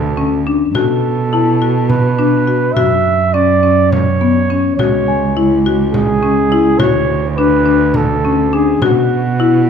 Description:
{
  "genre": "contemporary instrumental, chamber music in an uneven meter",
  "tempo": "208 BPM (eighths)",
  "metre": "7/8",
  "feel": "straight",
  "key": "F# minor",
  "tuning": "A4 = 440 Hz",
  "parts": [
    { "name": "breathy flugelhorn", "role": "melody", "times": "0.0-9.7 s", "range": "F#4 to E5", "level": "-17 LUFS", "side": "right 5 dB", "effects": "none" },
    { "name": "dark cello", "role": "bass", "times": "0.0-9.7 s", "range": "C#2 to B2", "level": "-16 LUFS", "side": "right 5 dB", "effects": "none" },
    { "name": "marimba with medium hard mallets", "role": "arpeggios", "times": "0.2-9.6 s", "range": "B3 to F#4", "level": "-15 LUFS", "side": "left 7 dB", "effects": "none" },
    { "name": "frame drum", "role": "percussion", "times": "0.7-9.5 s", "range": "none", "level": "-22 LUFS", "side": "left 1 dB", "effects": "none" },
    { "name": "celesta", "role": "texture", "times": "1.3-6.4 s", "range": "G#5 to A5", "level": "-24 LUFS", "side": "left 8 dB", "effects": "none" }
  ],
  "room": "light reverb",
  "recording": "close, detailed microphones",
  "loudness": "-11 LUFS",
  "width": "side -7 dB against mid",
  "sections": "0.0-9.7 A section",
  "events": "none",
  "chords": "0.0 Dmaj7(no3); 0.7 B7(no3); 2.8 F#5; 4.8 C#m; 6.8 Dmaj7; 8.8 B5"
}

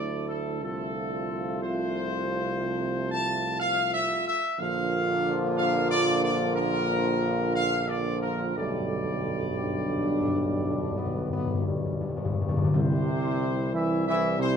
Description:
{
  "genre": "classical, ceremonial fanfare",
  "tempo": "60 BPM",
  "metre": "4/4",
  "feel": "straight",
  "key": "C major",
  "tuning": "A4 = 441 Hz",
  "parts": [
    { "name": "mellow trumpet section", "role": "melody", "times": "0.0-14.6 s", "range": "A4 to A5", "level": "-30 LUFS", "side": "left 1 dB", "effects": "none" },
    { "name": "clear French horn section", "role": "sustained chords", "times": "0.0-14.6 s", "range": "G3 to A4", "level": "-32 LUFS", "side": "left 4 dB", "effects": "none" },
    { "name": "mellow trombone section", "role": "sustained chords", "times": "0.0-14.6 s", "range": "C3 to G3", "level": "-32 LUFS", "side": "right 4 dB", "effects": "none" },
    { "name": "warm tuba", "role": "bass", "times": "0.0-14.6 s", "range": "Bb1 to D2", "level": "-31 LUFS", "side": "right 3 dB", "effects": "none" },
    { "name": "timpani", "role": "percussion", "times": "8.6-14.2 s", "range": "G2 to C3", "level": "-29 LUFS", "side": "left 2 dB", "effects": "none" }
  ],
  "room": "moderate large studio reverb, RT60 1.2 s",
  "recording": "none",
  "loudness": "-25 LUFS",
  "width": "side -7 dB against mid",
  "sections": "0.0-12.7 A section; 12.7-14.6 B section",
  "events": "timpani fill 8.6-12.7",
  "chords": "0.0 Dadd9; 0.6 F/C; 4.6 Bb; 8.6 Gadd9/B; 12.7 C"
}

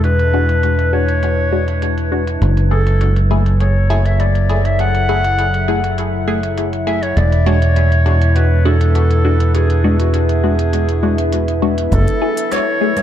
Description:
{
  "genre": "ambient dub",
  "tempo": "101 BPM",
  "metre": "4/4",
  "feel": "straight",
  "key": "F# minor",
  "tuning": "A4 = 440 Hz",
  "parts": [
    { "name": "mellow clarinet", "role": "melody", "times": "0.0-13.0 s", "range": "F#4 to F#5", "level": "-20 LUFS", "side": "equal", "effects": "dub echo" },
    { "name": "warbly tape-like pad", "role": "sustained chords", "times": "0.0-13.0 s", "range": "C#3 to E5", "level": "-22 LUFS", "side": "left 2 dB", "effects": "chorus, built-in reverb" },
    { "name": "fingered electric bass", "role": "bass", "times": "0.0-12.1 s", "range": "E1 to F#1", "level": "-14 LUFS", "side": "equal", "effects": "none" },
    { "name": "organic electronic drum kit", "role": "drums", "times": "0.0-13.0 s", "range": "congas, hi-hat, rim click", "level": "-31 LUFS", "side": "right 1 dB", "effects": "low-pass filter on hats, low-pass filter on snare, low-pass filter on perc, low-pass filter on room, dub echo" },
    { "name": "filtered dub chord stab", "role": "stabs", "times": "0.3-12.9 s", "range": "G#3 to G#4", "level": "-22 LUFS", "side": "left 2 dB", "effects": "phaser, dub echo" },
    { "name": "electronic kick drum", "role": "drums", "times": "11.9-12.0 s", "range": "none", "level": "-19 LUFS", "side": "equal", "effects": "none" }
  ],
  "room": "light reverb",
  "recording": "none",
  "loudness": "-13 LUFS",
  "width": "side -10 dB against mid",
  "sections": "0.0-11.9 A section; 11.9-13.0 B section",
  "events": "none",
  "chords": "0.0 E7; 2.4 F#m7; 7.2 E7; 11.9 F#m7"
}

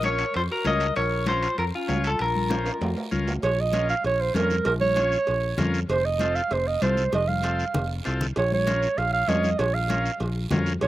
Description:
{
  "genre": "latin, cumbia",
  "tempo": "195 BPM",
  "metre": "4/4",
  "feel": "straight",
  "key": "Bb harmonic minor",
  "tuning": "A4 = 441 Hz",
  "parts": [
    { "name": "clean electric guitar", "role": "melody", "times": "0.0-3.1 s", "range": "F4 to Eb5", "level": "-26 LUFS", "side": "left 3 dB", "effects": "spring reverb" },
    { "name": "breathy clarinet", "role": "second line", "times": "0.0-10.9 s", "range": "Db4 to F5", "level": "-25 LUFS", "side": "right 4 dB", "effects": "slapback echo" },
    { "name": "combo organ", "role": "accompaniment", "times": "0.0-10.7 s", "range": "C4 to Db5", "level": "-32 LUFS", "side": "left 2 dB", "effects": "none" },
    { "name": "fingered electric bass", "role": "bass", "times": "0.0-10.9 s", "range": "F1 to F2", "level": "-27 LUFS", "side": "equal", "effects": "none" },
    { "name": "congas", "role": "percussion", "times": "0.0-10.9 s", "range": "none", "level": "-30 LUFS", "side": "left 3 dB", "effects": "slapback echo" },
    { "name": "guiro", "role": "percussion", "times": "0.0-10.9 s", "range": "none", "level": "-41 LUFS", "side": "right 7 dB", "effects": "none" },
    { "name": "timbales and cowbell", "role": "percussion", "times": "0.0-10.9 s", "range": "none", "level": "-34 LUFS", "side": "right 2 dB", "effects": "slapback echo" }
  ],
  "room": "little or no reverb",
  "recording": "recorded outdoors, with no room sound",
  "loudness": "-22 LUFS",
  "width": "side -15 dB against mid",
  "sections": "0.0-3.4 A section; 3.4-10.9 B section",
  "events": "drum fill 2.5-3.4, 7.1-8.4; clarinet solo 3.4-10.9",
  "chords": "0.0 Bbm; 5.9 F7; 8.4 Bbm"
}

